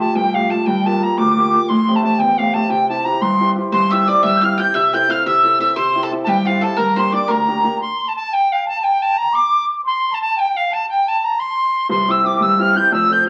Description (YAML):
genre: celtic folk, Celtic jig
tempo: 117 BPM (dotted quarters)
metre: 6/8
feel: straight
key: unclear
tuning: A4 = 442 Hz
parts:
  - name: bright reedy mid whistle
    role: melody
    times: 0.0-13.3 s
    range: F5 to G6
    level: -19 LUFS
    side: equal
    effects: none
  - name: mellow hollow concert flute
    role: second line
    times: 0.0-13.3 s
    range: F5 to G6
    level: -24 LUFS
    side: equal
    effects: none
  - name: clear upright piano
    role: accompaniment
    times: 0.0-7.8, 11.9-13.3 s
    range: F1 to A4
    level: -21 LUFS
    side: equal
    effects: none
  - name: bowl-back mandolin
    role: second line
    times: 3.7-7.8 s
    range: F4 to G5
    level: -25 LUFS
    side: equal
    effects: none
room: wet club reverb, RT60 0.8 s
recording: very old 78 rpm record, vinyl crackle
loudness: -17 LUFS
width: mono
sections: 0.0-7.8 A section; 7.8-13.3 A section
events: none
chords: 0.0 Fadd9; 0.7 Gm7; 1.7 Am7; 2.7 C; 4.7 Am/C; 5.8 C; 6.8 Gm; 7.8 N.C.; 10.9 C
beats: 0.16 | 0.67 1.17 | 1.68 2.19 | 2.70 3.21 | 3.72 4.23 | 4.74 5.25 | 5.76 6.28 | 6.79 7.30 | 7.81 8.32 | 8.83 9.34 | 9.85 10.37 | 10.88 11.39 | 11.90 12.41 | 12.92